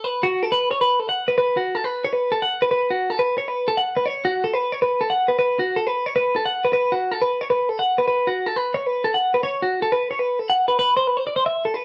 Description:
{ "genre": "rock", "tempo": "313 BPM (eighths)", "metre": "7/8", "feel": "straight", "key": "unclear", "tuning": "A4 = 440 Hz", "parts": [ { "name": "twelve-string electric guitar", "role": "solo", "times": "0.0-11.8 s", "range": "F#4 to F#5", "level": "-21 LUFS", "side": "equal", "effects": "none" } ], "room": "moderate studio reverb, RT60 0.7 s", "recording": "band playing live in one room", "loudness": "-21 LUFS", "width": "mono", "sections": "0.0-10.8 A section; 10.8-11.8 B section", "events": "none", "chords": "none" }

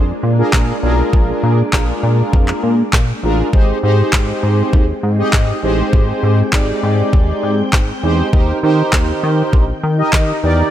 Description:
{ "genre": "dance-pop", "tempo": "100 BPM", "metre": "4/4", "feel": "straight", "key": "unclear", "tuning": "A4 = 440 Hz", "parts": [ { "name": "mellow synth brass", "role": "accompaniment", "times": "0.0-10.7 s", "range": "D4 to Eb5", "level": "-18 LUFS", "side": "right 1 dB", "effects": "chorus, sidechain pumping" }, { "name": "ensemble organ-string", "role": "sustained chords", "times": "0.0-10.7 s", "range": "Eb3 to G5", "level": "-24 LUFS", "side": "left 1 dB", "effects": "ensemble chorus, sidechain pumping" }, { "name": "chorused synth bass", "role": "bass", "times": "0.0-10.6 s", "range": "Ab1 to Eb3", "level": "-16 LUFS", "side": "equal", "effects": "sidechain pumping" }, { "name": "smooth R&B drum kit", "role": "drums", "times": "0.5-10.3 s", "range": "handclaps, kick drum, snare drum", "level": "-15 LUFS", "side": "equal", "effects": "none" } ], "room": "digital ambience", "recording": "none", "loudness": "-12 LUFS", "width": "side -11 dB against mid", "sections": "0.0-10.7 A section", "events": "none", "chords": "0.0 Bb7; 3.5 Abmaj7; 8.3 Eb6" }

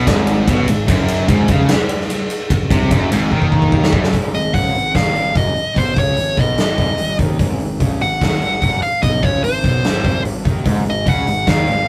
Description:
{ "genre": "hard rock", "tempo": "147 BPM", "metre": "4/4", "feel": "straight", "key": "unclear", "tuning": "A4 = 440 Hz", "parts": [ { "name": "cranked stack guitar", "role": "riff", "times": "0.0-4.1, 10.7-11.8 s", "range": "Gb2 to Eb3", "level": "-21 LUFS", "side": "equal", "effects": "overdrive" }, { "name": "crunchy overdriven guitar", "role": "riff", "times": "0.0-11.8 s", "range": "Gb2 to Eb3", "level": "-26 LUFS", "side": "equal", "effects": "none" }, { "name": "heavy high-gain guitar", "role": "riff", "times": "0.0-4.1 s", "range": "Gb2 to Eb3", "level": "-27 LUFS", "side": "equal", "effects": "distortion" }, { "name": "fuzz picked electric bass", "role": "bass", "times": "0.0-11.9 s", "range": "Gb1 to Eb2", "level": "-25 LUFS", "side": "equal", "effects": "overdrive" }, { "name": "huge arena drum kit", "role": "drums", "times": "0.1-11.8 s", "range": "hi-hat, kick drum, ride cymbal, snare drum", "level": "-19 LUFS", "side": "equal", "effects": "none" }, { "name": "dark smooth lead guitar", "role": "melody", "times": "4.3-11.9 s", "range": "C5 to Gb5", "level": "-21 LUFS", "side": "equal", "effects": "overdrive" } ], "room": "light reverb", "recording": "rough rehearsal-room recording, tube saturation", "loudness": "-16 LUFS", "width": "mono", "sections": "0.0-4.1 A section; 4.1-11.9 B section", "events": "drum fill 3.3-4.1", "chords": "0.0 Ab5; 0.9 Gb5; 4.1 Ab5" }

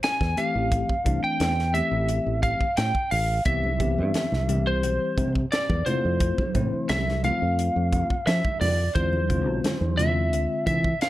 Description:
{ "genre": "electric jazz fusion", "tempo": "87 BPM", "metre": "4/4", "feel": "straight", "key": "unclear", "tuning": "A4 = 440 Hz", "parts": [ { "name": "lightly driven lead guitar", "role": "melody", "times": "0.0-11.1 s", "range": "C5 to G#5", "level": "-26 LUFS", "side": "equal", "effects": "slapback echo, plate reverb" }, { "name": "crisp fusion drum kit", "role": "drums", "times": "0.0-11.1 s", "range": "hi-hat, kick drum, snare drum", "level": "-28 LUFS", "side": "equal", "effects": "none" }, { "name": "fingered electric bass", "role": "bass", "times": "0.2-10.9 s", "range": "A1 to F3", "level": "-26 LUFS", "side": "equal", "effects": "none" }, { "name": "bell-like tine electric piano", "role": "accompaniment", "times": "0.4-10.9 s", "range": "D3 to G4", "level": "-29 LUFS", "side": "left 4 dB", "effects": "fast stereo tremolo" }, { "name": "congas", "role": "percussion", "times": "3.6-10.8 s", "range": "none", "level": "-32 LUFS", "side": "right 2 dB", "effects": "none" } ], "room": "light reverb", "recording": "dark, warm production", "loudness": "-22 LUFS", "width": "side -15 dB against mid", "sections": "0.0-11.1 A section", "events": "none", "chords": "0.4 Am7; 3.5 Cmaj7; 5.9 Fmaj7; 9.0 E7b9b13" }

